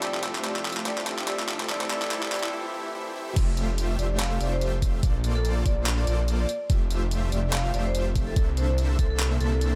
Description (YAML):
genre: future bass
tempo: 144 BPM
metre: 4/4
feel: swing 56% on 16ths, half-time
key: F major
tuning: A4 = 439 Hz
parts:
  - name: vibraphone with hard mallets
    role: melody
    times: 0.0-9.7 s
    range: A4 to F5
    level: -36 LUFS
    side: equal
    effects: sidechain pumping, dub echo
  - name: barky tine electric piano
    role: accompaniment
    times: 0.0-3.4 s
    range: E3 to E5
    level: -38 LUFS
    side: equal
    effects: sidechain pumping, dub echo
  - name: shimmering ambient pad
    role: sustained chords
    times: 0.0-2.5 s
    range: none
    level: barely audible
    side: none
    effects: none
  - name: dense compressed supersaw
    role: riff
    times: 0.0-9.8 s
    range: A3 to E5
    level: -35 LUFS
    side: equal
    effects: sidechain pumping
  - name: detuned saw bass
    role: bass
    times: 0.0-9.8 s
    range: F1 to C2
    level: -29 LUFS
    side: equal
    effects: chorus, sidechain pumping
  - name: pop drum kit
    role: drums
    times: 0.0-9.7 s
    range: crash cymbal, handclaps, hi-hat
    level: -33 LUFS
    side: equal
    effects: overdrive, high-pass filter on snare, high-pass filter on hats, high-pass filter on cymbals, high-pass filter on room
  - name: riser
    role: sound effects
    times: 0.8-2.5 s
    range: none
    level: -45 LUFS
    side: equal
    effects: none
  - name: electronic kick drum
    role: drums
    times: 3.4-9.1 s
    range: none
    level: -26 LUFS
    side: equal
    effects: overdrive
room: little or no reverb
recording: high-pass filter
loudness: -26 LUFS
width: mono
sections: 0.0-3.4 A section; 3.4-9.8 B section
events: build-up 0.0-3.4; drum fill 0.0-2.5; filter sweep 0.0-3.4; break 2.5-3.4; drop 3.4-9.8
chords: 0.0 Fmaj9; 1.7 C13; 3.4 Fmaj9; 5.0 Bbmaj9; 6.5 Fmaj9; 8.4 C13